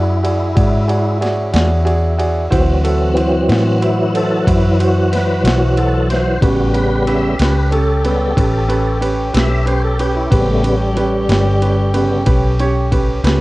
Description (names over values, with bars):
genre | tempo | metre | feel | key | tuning
slow blues | 62 BPM (dotted quarters) | 12/8 | straight | A mixolydian | A4 = 440 Hz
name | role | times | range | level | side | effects
warm concert grand piano | accompaniment | 0.0-13.4 s | C#4 to D5 | -20 LUFS | right 2 dB | cassette tape
mellow horn section | sustained chords | 0.0-13.4 s | C#4 to G5 | -26 LUFS | left 1 dB | cassette tape
tonewheel organ | sustained chords | 0.0-12.2 s | C#3 to E5 | -18 LUFS | equal | slow rotary speaker, chorus vibrato, cassette tape
vintage muted fingered electric bass | bass | 0.0-13.4 s | G1 to A2 | -16 LUFS | equal | none
breakbeat sampler-style drum kit | drums | 0.2-13.4 s | kick drum, ride cymbal, snare drum | -20 LUFS | equal | cassette tape
room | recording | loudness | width
little or no reverb | home recording on cassette | -12 LUFS | side -19 dB against mid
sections
0.0-13.4 A section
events
tonewheel organ solo 0.0-13.4; grand piano fill 13.2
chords
0.0 E7; 2.5 D7; 6.4 A7